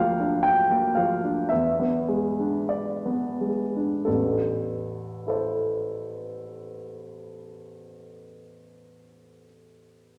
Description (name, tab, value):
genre	classical, romantic character piece for solo piano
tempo	41-61 BPM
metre	4/4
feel	rubato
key	A minor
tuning	A4 = 440 Hz
part	warm baby grand piano	solo	0.0-10.2 s	A1 to G5	-26 LUFS	equal	none
room	wet recital hall reverb, RT60 1.4 s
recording	none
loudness	-25 LUFS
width	mono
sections	0.0-4.1 A section; 4.1-8.8 B section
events	slowing down 0.0-4.1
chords	0.0 Bb/D; 1.5 E7; 4.1 Am